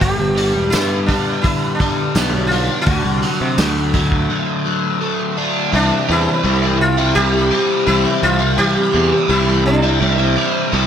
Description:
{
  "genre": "psychedelic rock",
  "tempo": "84 BPM",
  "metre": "4/4",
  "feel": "straight",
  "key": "unclear",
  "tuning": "A4 = 440 Hz",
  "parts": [
    { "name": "sitar", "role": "melody", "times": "0.0-10.3 s", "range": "D4 to G4", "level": "-19 LUFS", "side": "equal", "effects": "tape echo" },
    { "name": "overdriven electric guitar", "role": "riff", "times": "0.0-10.9 s", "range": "G2 to E4", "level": "-18 LUFS", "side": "equal", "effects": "flanger, tape echo" },
    { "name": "fuzz picked electric bass", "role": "bass", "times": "0.0-10.9 s", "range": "E1 to C3", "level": "-18 LUFS", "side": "equal", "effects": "overdrive" },
    { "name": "vintage drum kit", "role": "drums", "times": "0.0-4.3 s", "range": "hi-hat, kick drum, snare drum", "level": "-21 LUFS", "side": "equal", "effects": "tape echo" },
    { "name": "tambourine", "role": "percussion", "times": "0.7-3.8 s", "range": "none", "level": "-32 LUFS", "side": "right 10 dB", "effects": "tape echo" }
  ],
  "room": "small room ambience",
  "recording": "echo-heavy mix",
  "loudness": "-14 LUFS",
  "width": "side -8 dB against mid",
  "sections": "0.0-5.7 A section; 5.7-10.9 B section",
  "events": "break 4.3-5.7",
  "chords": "0.0 G; 2.9 D; 5.7 C"
}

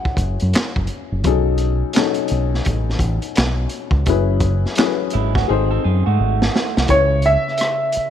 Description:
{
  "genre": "R&B, neo-soul",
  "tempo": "85 BPM",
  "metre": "4/4",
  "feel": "swing 61% on 16ths",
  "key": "C# minor",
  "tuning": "A4 = 440 Hz",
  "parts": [
    { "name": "clear concert grand piano", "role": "melody", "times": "0.0-0.1, 6.9-8.1 s", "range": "C#5 to F#5", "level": "-17 LUFS", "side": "right 1 dB", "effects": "none" },
    { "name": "dark upright piano", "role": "accompaniment", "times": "0.0-8.1 s", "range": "B2 to E5", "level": "-23 LUFS", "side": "left 12 dB", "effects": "none" },
    { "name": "crunchy breakbeat drum kit", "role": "drums", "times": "0.1-8.1 s", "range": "handclaps, hi-hat, kick drum, rim click, snare drum", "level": "-20 LUFS", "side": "equal", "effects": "none" },
    { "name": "deep dub fingered electric bass", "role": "bass", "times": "0.2-8.0 s", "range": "F#1 to G#2", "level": "-18 LUFS", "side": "equal", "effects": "none" },
    { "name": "electric guitar through a small old amp", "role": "second line", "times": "5.1-6.9 s", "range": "G#3 to A4", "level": "-24 LUFS", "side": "right 14 dB", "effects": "none" }
  ],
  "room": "light reverb, studio reverb",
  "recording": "1960s-style stereo with parts hard left and right",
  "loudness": "-16 LUFS",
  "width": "side -10 dB against mid",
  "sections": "0.0-6.9 A section; 6.9-8.1 B section",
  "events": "drum fill 5.5-6.9",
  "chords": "0.0 F#7sus4; 1.2 B13; 4.1 F#7sus4; 5.5 G#7b9; 6.9 C#m7"
}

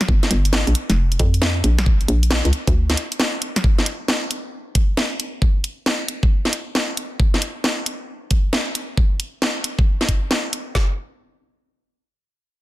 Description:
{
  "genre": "UK garage, two-step garage",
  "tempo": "135 BPM",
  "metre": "4/4",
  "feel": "swing 65% on 16ths",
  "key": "unclear",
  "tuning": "A4 = 439 Hz",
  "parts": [
    { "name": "garage drum kit", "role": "drums", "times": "0.0-10.6 s", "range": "hi-hat, snare drum", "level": "-21 LUFS", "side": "equal", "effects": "studio ambience" },
    { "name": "hollow knocking FM bass", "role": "bass", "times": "0.1-3.0 s", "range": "F1 to F2", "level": "-18 LUFS", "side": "equal", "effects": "sidechain pumping" },
    { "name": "garage drum kit", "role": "drums", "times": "0.1-10.9 s", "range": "kick drum, snare drum", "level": "-17 LUFS", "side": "equal", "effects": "studio ambience" }
  ],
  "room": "light reverb",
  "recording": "dense, heavily limited modern master",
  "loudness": "-18 LUFS",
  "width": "side -16 dB against mid",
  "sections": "0.0-10.8 A section; 10.8-12.6 B section",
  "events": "none",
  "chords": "none"
}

